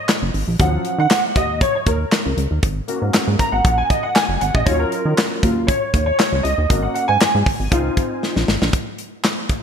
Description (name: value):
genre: early-eighties boogie funk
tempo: 118 BPM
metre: 4/4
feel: straight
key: Eb dorian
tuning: A4 = 436 Hz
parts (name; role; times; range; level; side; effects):
- warm concert grand piano; accompaniment; 0.0-8.4 s; F3 to Bb5; -20 LUFS; equal; ensemble chorus
- modern studio drum kit; drums; 0.1-9.6 s; handclaps, hi-hat, kick drum, snare drum; -19 LUFS; equal; none
- chorused synth bass; bass; 0.2-8.7 s; Gb1 to Eb3; -20 LUFS; right 1 dB; none
room: light reverb, small room ambience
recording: bright 1980s-style digital production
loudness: -16 LUFS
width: side -7 dB against mid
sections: 0.0-8.7 A section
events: grand piano solo 0.0-8.7; drum fill 8.2-8.7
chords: 0.0 Ab7sus2; 0.6 Ebm9; 2.6 Ab9sus4; 4.7 Ebm9; 6.7 Ab9sus4; 7.7 Dbmaj7; 8.7 N.C.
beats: 0.09 | 0.60 1.11 1.61 2.12 | 2.63 3.14 3.65 4.16 | 4.67 5.17 5.68 6.19 | 6.70 7.21 7.72 8.22 | 8.73 9.24